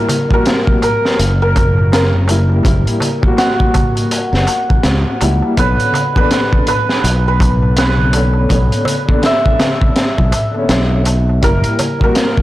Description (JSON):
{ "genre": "trip hop", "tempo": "82 BPM", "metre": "4/4", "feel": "swing 59% on 16ths", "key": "B harmonic minor", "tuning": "A4 = 440 Hz", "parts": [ { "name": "santur", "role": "melody", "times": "0.0-12.4 s", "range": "F#4 to E5", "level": "-18 LUFS", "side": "right 1 dB", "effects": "vintage 12-bit sampler grit, tape echo" }, { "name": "dark upright piano", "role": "accompaniment", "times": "0.0-12.4 s", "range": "D3 to F#4", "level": "-20 LUFS", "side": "left 2 dB", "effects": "tremolo, tape echo" }, { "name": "crunchy breakbeat drum kit", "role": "drums", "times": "0.1-12.4 s", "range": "hi-hat, kick drum, snare drum", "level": "-15 LUFS", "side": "equal", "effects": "none" }, { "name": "darbuka", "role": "percussion", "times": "0.1-12.4 s", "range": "none", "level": "-25 LUFS", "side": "right 1 dB", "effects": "none" }, { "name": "modern bright fingered electric bass", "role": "bass", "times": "1.2-11.6 s", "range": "F#1 to C#2", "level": "-13 LUFS", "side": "equal", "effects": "tube saturation" }, { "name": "warbly tape-like pad", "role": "sustained chords", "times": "12.0-12.4 s", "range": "none", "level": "barely audible", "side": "none", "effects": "none" } ], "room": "light reverb, small room ambience", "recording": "blown-out, overdriven recording, vinyl crackle, overdrive", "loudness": "-11 LUFS", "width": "side -15 dB against mid", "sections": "0.0-12.4 A section", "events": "none", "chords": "0.0 F#7b9; 5.6 Bmadd9; 11.4 F#7b9" }